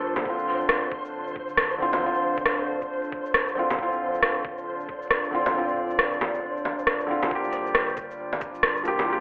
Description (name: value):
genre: future garage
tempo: 136 BPM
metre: 4/4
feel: swing 62% on 16ths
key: unclear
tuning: A4 = 439 Hz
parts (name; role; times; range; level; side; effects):
- felt-muted upright piano; accompaniment; 0.0-9.2 s; D3 to A4; -31 LUFS; equal; sidechain pumping, digital delay
- warbly tape-like pad; sustained chords; 0.0-9.2 s; D3 to D5; -35 LUFS; equal; chorus, built-in reverb, sidechain pumping
- warm sub bass; bass; 0.0-9.2 s; D1 to G1; -54 LUFS; equal; sidechain pumping
- flickering grainy texture; texture; 0.0-7.3 s; C5; -37 LUFS; equal; built-in reverb
- organic electronic drum kit; drums; 0.2-9.1 s; bongos, hi-hat, rim click, shaker; -27 LUFS; equal; overdrive
- electronic kick drum; drums; 0.3-8.5 s; none; -44 LUFS; equal; none
room: wet digital room reverb, RT60 1.1 s, digital ambience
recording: vinyl crackle, telephone sound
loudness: -26 LUFS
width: mono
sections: 0.0-7.3 A section; 7.3-9.2 B section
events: kick drops out 5.5-7.3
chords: 0.3 Dm7; 7.3 Gm7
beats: | 0.25 0.69 1.14 1.58 | 2.02 2.46 2.90 3.34 | 3.78 4.22 4.66 5.11 | 5.55 5.99 6.43 6.87 | 7.31 7.75 8.19 8.63 | 9.08